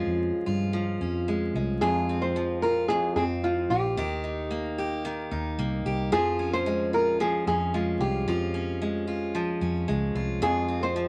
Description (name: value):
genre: acoustic pop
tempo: 112 BPM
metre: 4/4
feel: straight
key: Db lydian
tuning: A4 = 440 Hz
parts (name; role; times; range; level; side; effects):
- nylon-string guitar; melody; 0.0-11.1 s; F4 to C5; -30 LUFS; equal; none
- picked steel-string acoustic guitar; accompaniment; 0.0-11.1 s; F2 to G4; -32 LUFS; equal; none
- vintage muted fingered electric bass; bass; 0.0-11.1 s; Bb1 to G2; -34 LUFS; equal; none
room: moderate small room reverb, RT60 0.6 s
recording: vinyl crackle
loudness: -27 LUFS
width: mono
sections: 0.0-1.8 A section; 1.8-11.1 B section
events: none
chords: 0.0 Db/F; 1.8 F5; 4.0 Eb; 6.1 Db; 10.4 F5